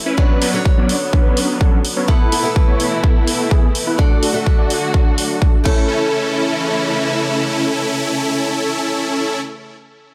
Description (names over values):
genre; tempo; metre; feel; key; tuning
EDM, festival progressive house; 126 BPM; 4/4; straight; A major; A4 = 440 Hz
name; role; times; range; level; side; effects
picked old ladder-braced acoustic guitar; accompaniment; 0.0-9.4 s; D3 to E5; -26 LUFS; equal; sidechain pumping, delay
dark symphonic string section; sustained chords; 0.0-9.4 s; B2 to F#4; -27 LUFS; equal; sidechain pumping
supersaw chords; riff; 0.1-9.4 s; F#3 to D5; -22 LUFS; equal; sidechain pumping, low-pass filter, delay
electronic kick drum; drums; 0.2-5.8 s; none; -16 LUFS; equal; none
big-room dance drum kit; drums; 0.4-5.8 s; crash cymbal, hi-hat; -26 LUFS; equal; none
room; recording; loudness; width
light reverb, digital ambience; none; -16 LUFS; mono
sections
0.0-5.9 A section; 5.9-9.7 B section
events
filter sweep on supersaw synth 0.0-5.9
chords
0.2 Bmadd9; 2.1 Esus4; 4.0 D; 5.7 A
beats
| 0.18 0.65 1.13 1.61 | 2.08 2.56 3.04 3.51 | 3.99 4.46 4.94 5.42 | 5.89 6.37 6.84 7.32 | 7.80 8.27 8.75 9.23